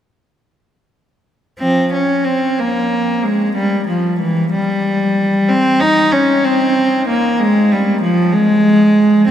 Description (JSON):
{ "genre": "classical, baroque-style suite movement for unaccompanied cello", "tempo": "62 BPM (dotted quarters)", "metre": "6/8", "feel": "rubato", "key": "unclear", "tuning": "A4 = 441 Hz", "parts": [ { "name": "rich cello", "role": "solo", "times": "1.6-9.3 s", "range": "E3 to Eb4", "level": "-12 LUFS", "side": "equal", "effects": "none" } ], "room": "wet cathedral reverb, RT60 6.9 s", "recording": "none", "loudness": "-12 LUFS", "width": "side -10 dB against mid", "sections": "1.6-9.3 A section", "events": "none", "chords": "none" }